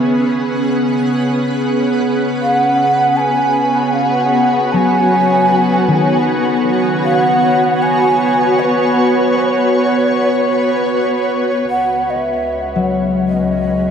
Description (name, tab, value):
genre	ambient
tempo	77 BPM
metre	3/4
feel	straight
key	unclear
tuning	A4 = 440 Hz
part	shimmering ambient pad	sustained chords	0.0-13.9 s	G#3 to F#5	-16 LUFS	equal	chorus, built-in reverb
part	concert harp	arpeggios	0.0-13.9 s	D#3 to D#6	-20 LUFS	left 3 dB	diffuse ambient delay
part	bowed-like drone	drone	0.0-13.9 s	C#3 to B3	-21 LUFS	equal	built-in reverb
part	breathy mellow shakuhachi	melody	2.4-13.9 s	B4 to A5	-16 LUFS	right 1 dB	diffuse ambient delay
part	rich chamber double bass section	bass	11.7-13.9 s	C#2	-30 LUFS	equal	none
room	wet huge ambient reverb, RT60 7.5 s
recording	dark, warm production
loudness	-12 LUFS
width	side -7 dB against mid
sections	0.0-11.7 A section; 11.7-13.9 B section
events	fade-in on ambient pad 0.0-11.7; fade-in on harp 0.0-11.7; fade-out on synth drone 0.0-11.7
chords	0.0 C#7sus2; 2.4 B13; 11.7 C#m7